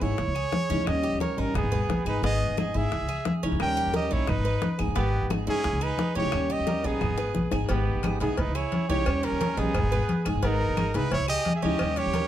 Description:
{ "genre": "latin, Cuban son and guajira", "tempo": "176 BPM", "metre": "4/4", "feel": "straight", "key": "G# harmonic minor", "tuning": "A4 = 440 Hz", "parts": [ { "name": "clear trumpet", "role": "melody", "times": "0.0-12.3 s", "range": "G4 to G5", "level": "-30 LUFS", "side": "right 1 dB", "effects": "none" }, { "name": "fingerpicked steel-string acoustic guitar", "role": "accompaniment", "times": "0.0-12.3 s", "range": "D#3 to G#4", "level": "-31 LUFS", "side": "left 2 dB", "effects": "none" }, { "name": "Cuban tres", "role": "arpeggios", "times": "0.0-12.3 s", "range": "B3 to B4", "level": "-35 LUFS", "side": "right 5 dB", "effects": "slapback echo" }, { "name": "upright bass", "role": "bass", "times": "0.0-12.3 s", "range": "G#1 to G#2", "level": "-29 LUFS", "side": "equal", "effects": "none" }, { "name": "congas", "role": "percussion", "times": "0.0-12.3 s", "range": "none", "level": "-31 LUFS", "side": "left 2 dB", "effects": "none" }, { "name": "bongos and cowbell", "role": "percussion", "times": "0.2-12.3 s", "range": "none", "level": "-36 LUFS", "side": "left 5 dB", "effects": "none" }, { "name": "claves", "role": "percussion", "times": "0.3-12.0 s", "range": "none", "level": "-42 LUFS", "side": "left 3 dB", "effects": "none" }, { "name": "growling trumpet", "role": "second line", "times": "1.6-12.3 s", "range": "B3 to A#4", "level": "-36 LUFS", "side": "right 6 dB", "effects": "none" } ], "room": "light reverb", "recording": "dark, warm production", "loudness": "-24 LUFS", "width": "side -11 dB against mid", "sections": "0.0-7.7 A section; 7.7-12.3 A section", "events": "drum fill 7.0-7.7", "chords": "0.2 C#madd9; 0.9 D#7; 1.6 G#m; 2.9 C#madd9; 3.6 D#7; 4.3 G#m; 5.6 C#madd9; 6.3 D#7; 7.0 G#m; 8.4 C#madd9; 9.1 D#7; 9.7 G#m; 11.1 C#madd9" }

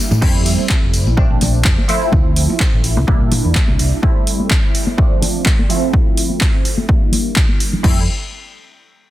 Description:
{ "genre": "filtered disco house", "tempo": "126 BPM", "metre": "4/4", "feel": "swing 54% on 16ths", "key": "F major", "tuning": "A4 = 441 Hz", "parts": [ { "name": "funky polysynth comp", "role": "accompaniment", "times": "0.0-8.0 s", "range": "F3 to E4", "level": "-21 LUFS", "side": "right 1 dB", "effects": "chorus, phaser, vintage 12-bit sampler grit, sidechain pumping, low-pass filter" }, { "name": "hollow-body short-scale fingered electric bass", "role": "bass", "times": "0.1-3.9, 7.8-8.1 s", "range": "F1 to Bb2", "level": "-16 LUFS", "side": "equal", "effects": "sidechain pumping, low-pass filter" }, { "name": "congas and tambourine", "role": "percussion", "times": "0.1-7.8 s", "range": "none", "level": "-23 LUFS", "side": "left 2 dB", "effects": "sidechain pumping on perc, low-pass filter on perc" }, { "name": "electronic kick drum", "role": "drums", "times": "0.2-7.9 s", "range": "none", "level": "-15 LUFS", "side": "equal", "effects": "none" }, { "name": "punchy analog drum machine", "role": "drums", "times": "0.2-7.9 s", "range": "crash cymbal, handclaps, hi-hat", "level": "-21 LUFS", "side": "equal", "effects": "sidechain pumping on hats, sidechain pumping on cymbals" } ], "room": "digital ambience", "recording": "dense, heavily limited modern master", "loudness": "-12 LUFS", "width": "side -15 dB against mid", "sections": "0.2-7.8 A section; 7.8-9.1 B section", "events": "filter sweep 0.2-7.8", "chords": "0.2 Fmaj7; 1.2 Bbmaj7; 1.9 Dm7; 3.1 C7; 4.0 Am7/G; 5.0 F6; 5.7 Fmaj7; 6.9 Gm6; 7.8 Fmaj7" }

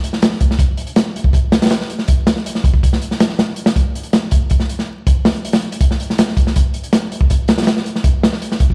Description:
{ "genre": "drum and bass", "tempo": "161 BPM", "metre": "4/4", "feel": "straight", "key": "none", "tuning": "none", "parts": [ { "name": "crunchy breakbeat drum kit", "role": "drums", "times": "0.0-8.7 s", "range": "hi-hat, kick drum, snare drum", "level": "-16 LUFS", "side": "equal", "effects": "none" } ], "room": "light reverb", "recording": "played on a big sound system in a bare room, large studio reverb, vinyl crackle", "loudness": "-16 LUFS", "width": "mono", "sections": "0.0-8.7 A section", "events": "none", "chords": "none" }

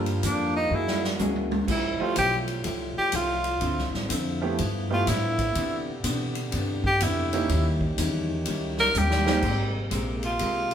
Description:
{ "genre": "jazz, big band swing", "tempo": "124 BPM", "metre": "4/4", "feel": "swing 66% on 8ths", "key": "unclear", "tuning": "A4 = 439 Hz", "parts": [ { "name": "bright tenor saxophone", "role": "melody", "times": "0.0-10.7 s", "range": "D4 to Bb4", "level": "-26 LUFS", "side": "equal", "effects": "none" }, { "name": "bright upright piano", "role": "accompaniment", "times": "0.0-9.4 s", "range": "Eb3 to G4", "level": "-30 LUFS", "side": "right 5 dB", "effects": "none" }, { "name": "vintage hollow-body jazz guitar", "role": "accompaniment", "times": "0.0-10.7 s", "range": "G2 to Bb4", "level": "-32 LUFS", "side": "left 3 dB", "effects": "none" }, { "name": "warm trombone section", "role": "sustained chords", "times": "0.0-10.7 s", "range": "C3 to G4", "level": "-36 LUFS", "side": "right 2 dB", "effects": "none" }, { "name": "upright bass", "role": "bass", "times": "0.0-10.7 s", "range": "Ab1 to C3", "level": "-29 LUFS", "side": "equal", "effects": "none" }, { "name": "swinging big-band drum kit", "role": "drums", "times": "0.1-10.7 s", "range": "crash cymbal, hi-hat, kick drum, ride cymbal, snare drum, toms", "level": "-31 LUFS", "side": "equal", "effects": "none" } ], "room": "moderate large studio reverb, RT60 1.1 s", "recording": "band playing live in one room", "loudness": "-23 LUFS", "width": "side -9 dB against mid", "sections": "0.0-9.4 A section; 9.4-10.7 A section", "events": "tenor saxophone solo 0.0-10.7; drum fill 0.7-1.7, 8.9-9.4", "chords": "0.0 Gm7; 0.7 F#9; 1.7 Fmaj9; 3.6 Dm9; 4.6 G13; 5.6 Cmaj9; 7.5 Eb7b9; 9.4 Abmaj9" }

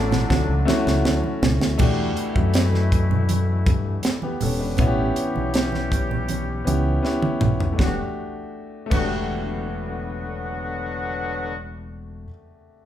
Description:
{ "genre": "lush 1970s-style soul", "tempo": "80 BPM", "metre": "4/4", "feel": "straight", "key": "E dorian", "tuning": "A4 = 440 Hz", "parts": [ { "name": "breathy flugelhorn", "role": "melody", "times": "0.0-1.4 s", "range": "A4", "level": "-36 LUFS", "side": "right 1 dB", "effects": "none" }, { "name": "clear grand piano", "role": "accompaniment", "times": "0.0-12.9 s", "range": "A3 to B4", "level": "-27 LUFS", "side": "left 2 dB", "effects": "none" }, { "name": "dark horn section", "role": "stabs", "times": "0.0-11.5 s", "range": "A2 to G4", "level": "-30 LUFS", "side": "left 2 dB", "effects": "none" }, { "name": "fingered electric bass", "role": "bass", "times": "0.0-12.2 s", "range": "E1 to G2", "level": "-24 LUFS", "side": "equal", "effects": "none" }, { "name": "tight funk drum kit", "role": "drums", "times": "0.1-9.1 s", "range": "crash cymbal, hi-hat, kick drum, snare drum, toms", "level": "-23 LUFS", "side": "right 1 dB", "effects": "none" }, { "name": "congas", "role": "percussion", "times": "0.1-9.1 s", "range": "none", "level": "-29 LUFS", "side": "right 3 dB", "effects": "none" } ], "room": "moderate large studio reverb, RT60 1.2 s", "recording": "band playing live in one room", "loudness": "-20 LUFS", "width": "side -11 dB against mid", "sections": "0.0-1.8 A section; 1.8-7.8 B section; 7.8-10.8 C section", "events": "drum fill 0.0-1.8, 7.0-7.8", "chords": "0.0 Dmaj9; 1.8 Em11; 4.8 A9; 7.8 Em11" }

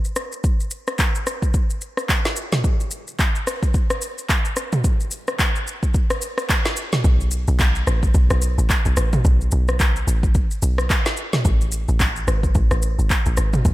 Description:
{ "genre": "amapiano", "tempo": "109 BPM", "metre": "4/4", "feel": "swing 58% on 16ths", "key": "unclear", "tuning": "A4 = 440 Hz", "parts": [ { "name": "deep house drum kit", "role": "drums", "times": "0.0-13.7 s", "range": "handclaps, kick drum, rim click, shaker, snare drum, toms", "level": "-19 LUFS", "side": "equal", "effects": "none" }, { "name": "deep log drum bass", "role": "bass", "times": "7.0-13.7 s", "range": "G#1 to B1", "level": "-19 LUFS", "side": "equal", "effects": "none" } ], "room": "light reverb, digital ambience", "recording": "none", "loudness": "-18 LUFS", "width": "side -17 dB against mid", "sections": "0.0-13.7 A section", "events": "none", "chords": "none" }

